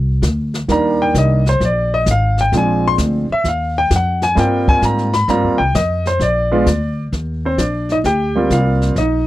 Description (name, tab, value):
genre	jazz piano trio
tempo	130 BPM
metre	4/4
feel	swing 68% on 8ths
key	Eb major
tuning	A4 = 444 Hz
part	upright bass	bass	0.0-9.3 s	Ab1 to Ab2	-18 LUFS	equal	none
part	jazz brush drum kit	drums	0.2-9.3 s	brushed snare drum, hi-hat, kick drum, snare drum	-20 LUFS	left 1 dB	none
part	clear upright piano	melody	0.7-9.3 s	Eb3 to C6	-16 LUFS	equal	none
room	little or no reverb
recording	dry, close 1970s-style studio recording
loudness	-13 LUFS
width	side -15 dB against mid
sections	0.0-7.1 A section; 7.1-9.3 B section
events	upright piano solo 0.0-7.1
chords	0.0 Cm7; 1.6 Bb9; 3.4 Eb69; 6.2 Bb; 7.1 Eb69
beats	0.22 0.68 1.14 | 1.60 2.06 2.52 2.98 | 3.44 3.90 4.36 4.82 | 5.28 5.74 6.20 6.66 | 7.12 7.58 8.04 8.51 | 8.96